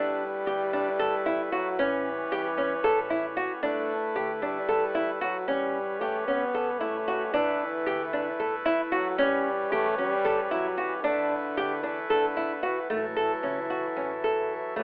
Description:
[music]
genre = contemporary instrumental, chamber music in an uneven meter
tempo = 227 BPM (eighths)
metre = 7/8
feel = straight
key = unclear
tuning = A4 = 440 Hz
[part]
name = mellow French horn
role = second line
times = 0.0-14.8 s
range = D3 to B3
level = -31 LUFS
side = equal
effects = none
[part]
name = hand-pumped harmonium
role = sustained chords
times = 0.0-14.8 s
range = F#3 to B4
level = -32 LUFS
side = equal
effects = none
[part]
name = nylon-string guitar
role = arpeggios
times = 0.0-14.8 s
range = A3 to A4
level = -27 LUFS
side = equal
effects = none
[part]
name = upright bass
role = bass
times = 0.0-14.8 s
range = G1 to E2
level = -50 LUFS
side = equal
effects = none
[sound]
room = light reverb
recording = telephone sound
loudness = -25 LUFS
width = side -29 dB against mid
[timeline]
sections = 0.0-12.9 A section; 12.9-14.8 B section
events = none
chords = 0.0 G69; 1.8 A9; 3.6 G69; 5.5 A9; 7.3 G69; 9.2 A9; 11.0 G69; 12.9 F#m7/A

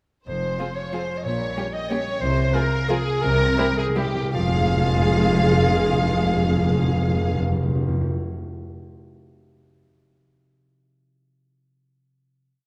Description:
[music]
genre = classical, orchestral ballroom waltz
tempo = 151-200 BPM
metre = 3/4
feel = rubato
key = F minor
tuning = A4 = 444 Hz
[part]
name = rich studio violin section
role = melody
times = 0.3-7.4 s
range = G4 to F5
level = -31 LUFS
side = equal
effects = none
[part]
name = warm clarinet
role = second line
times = 0.3-7.4 s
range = F4 to Eb5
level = -30 LUFS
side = equal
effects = none
[part]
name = concert harp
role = arpeggios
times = 0.3-8.2 s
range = F2 to G5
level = -33 LUFS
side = equal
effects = none
[part]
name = rich studio double bass section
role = bass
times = 0.3-7.4 s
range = F1 to C2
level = -29 LUFS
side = equal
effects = none
[part]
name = warm studio cello section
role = bass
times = 0.3-7.4 s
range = F2 to C3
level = -31 LUFS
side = equal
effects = none
[part]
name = warm studio violin section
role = second line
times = 0.6-7.4 s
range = Db4 to F5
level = -31 LUFS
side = equal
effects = none
[part]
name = warm studio viola section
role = accompaniment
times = 0.6-7.4 s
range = F3 to Ab4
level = -30 LUFS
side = equal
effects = none
[part]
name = timpani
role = percussion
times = 2.2-8.1 s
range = F2 to C3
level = -27 LUFS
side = equal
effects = none
[sound]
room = wet scoring stage reverb, RT60 2.0 s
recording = none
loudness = -22 LUFS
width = mono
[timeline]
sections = 0.3-4.3 A section; 4.3-6.6 final chord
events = slowing down 1.7-4.3; timpani fill 3.2-4.3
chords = 0.3 Fm; 1.3 Gdim/Bb; 2.2 Fm/C; 3.2 C7; 4.3 Fm

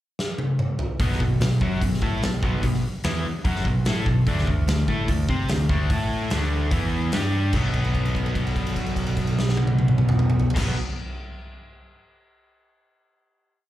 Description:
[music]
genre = hard rock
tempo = 147 BPM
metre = 4/4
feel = straight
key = B phrygian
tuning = A4 = 440 Hz
[part]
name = huge arena drum kit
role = drums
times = 0.2-10.7 s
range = crash cymbal, hi-hat, kick drum, snare drum, toms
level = -25 LUFS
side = equal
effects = none
[part]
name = cranked stack guitar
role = riff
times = 1.0-10.8 s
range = B2 to C5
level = -26 LUFS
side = equal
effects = overdrive, slapback echo
[part]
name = growling picked electric bass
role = bass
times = 1.0-10.7 s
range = B1 to C3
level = -24 LUFS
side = equal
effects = overdrive
[sound]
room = small room ambience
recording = live gig heard through the venue's PA, club reverb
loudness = -20 LUFS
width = side -14 dB against mid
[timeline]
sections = 0.0-1.0 pickup bar; 1.0-7.5 riff; 7.5-10.8 final chord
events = drum fill 0.2-1.0; held note 7.5-10.6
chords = 0.0 N.C.; 1.0 B5; 4.3 D5; 5.9 A5; 6.3 D5; 6.7 E5; 7.1 G5; 7.5 B5

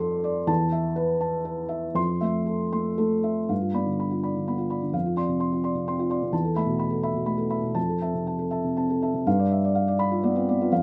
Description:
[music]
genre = neoclassical minimalist piano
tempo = 115-132 BPM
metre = 3/4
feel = rubato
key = unclear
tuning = A4 = 440 Hz
[part]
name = felt-muted upright piano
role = solo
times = 0.0-10.8 s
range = E2 to C6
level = -25 LUFS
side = equal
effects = none
[sound]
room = wet studio reverb, RT60 0.6 s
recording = rough home demo mix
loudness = -26 LUFS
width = mono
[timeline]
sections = 0.0-3.5 A section; 3.5-9.3 B section; 9.3-10.8 C section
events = none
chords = 0.5 Asus2/E; 2.0 Fmaj7; 3.5 G7; 4.9 Dm7/F; 6.3 Asus2/E; 7.8 Fmaj7; 9.3 G7

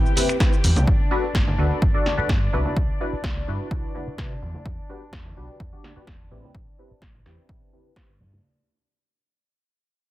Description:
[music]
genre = filtered disco house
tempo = 127 BPM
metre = 4/4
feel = straight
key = unclear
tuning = A4 = 440 Hz
[part]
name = funky polysynth comp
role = accompaniment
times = 0.0-8.1 s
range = C4 to D5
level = -28 LUFS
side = left 1 dB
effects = chorus, phaser, sidechain pumping, low-pass filter
[part]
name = rich chamber string section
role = sustained chords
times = 0.0-8.4 s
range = D4 to G5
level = -34 LUFS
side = left 2 dB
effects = sidechain pumping, low-pass filter
[part]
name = punchy analog drum machine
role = drums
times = 0.1-8.1 s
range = cabasa, finger snaps, hi-hat, snare drum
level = -29 LUFS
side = equal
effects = sidechain pumping on hats, low-pass filter on hats, sidechain pumping on perc, low-pass filter on perc, low-pass filter on snare, low-pass filter on room
[part]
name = tambourine and congas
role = percussion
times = 0.1-8.4 s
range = none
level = -31 LUFS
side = right 1 dB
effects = sidechain pumping on perc, low-pass filter on perc
[part]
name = electronic kick drum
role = drums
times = 0.4-8.1 s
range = none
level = -23 LUFS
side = equal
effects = none
[part]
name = overdriven fingered electric bass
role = bass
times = 0.6-8.4 s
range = E1 to C3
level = -25 LUFS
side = equal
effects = sidechain pumping, low-pass filter
[sound]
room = digital ambience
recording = dense, heavily limited modern master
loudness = -20 LUFS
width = side -16 dB against mid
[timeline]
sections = 0.0-8.4 A section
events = fade-out 0.0-8.4; filter sweep on drum 0.0-8.4; filter sweep 0.0-8.4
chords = 0.0 Am9 (rootless); 0.9 Gmaj9; 2.5 Cmaj9#11; 4.7 Em9; 6.3 Am9

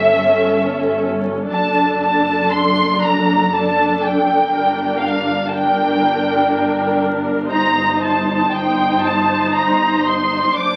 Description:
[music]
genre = classical, slow romantic movement for string orchestra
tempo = 60 BPM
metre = 3/4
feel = rubato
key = unclear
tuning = A4 = 440 Hz
[part]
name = rich chamber violin section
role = melody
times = 0.0-10.8 s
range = E5 to D6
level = -22 LUFS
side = equal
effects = none
[part]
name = warm chamber violin section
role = second line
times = 0.0-10.8 s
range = E5 to D6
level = -23 LUFS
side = equal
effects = none
[part]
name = warm symphonic viola section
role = accompaniment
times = 0.0-10.8 s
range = C#4 to C5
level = -21 LUFS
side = equal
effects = none
[part]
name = warm chamber cello section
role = bass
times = 0.0-10.8 s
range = F#2 to G2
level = -29 LUFS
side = equal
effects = none
[part]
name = warm chamber double bass section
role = bass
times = 0.0-10.8 s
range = F#1 to G1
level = -30 LUFS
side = equal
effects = none
[sound]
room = wet studio reverb, RT60 0.7 s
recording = very old 78 rpm record, vinyl crackle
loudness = -17 LUFS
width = mono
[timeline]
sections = 0.0-10.8 A section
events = none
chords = 0.0 A7/G; 1.5 D/F#; 4.5 Gm; 7.5 Cm/G

